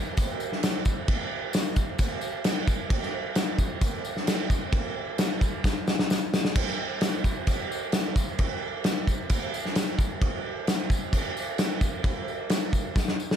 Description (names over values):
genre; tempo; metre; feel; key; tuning
rock; 131 BPM; 4/4; straight; none; none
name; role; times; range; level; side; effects
loose indie drum kit; drums; 0.2-13.4 s; crash cymbal, kick drum, snare drum; -25 LUFS; equal; none
tambourine; percussion; 0.2-13.3 s; none; -41 LUFS; left 6 dB; none
room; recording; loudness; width
light reverb, small room ambience; none; -25 LUFS; side -9 dB against mid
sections
0.0-13.4 A section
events
drum fill 5.6-6.6, 13.0-13.4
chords
none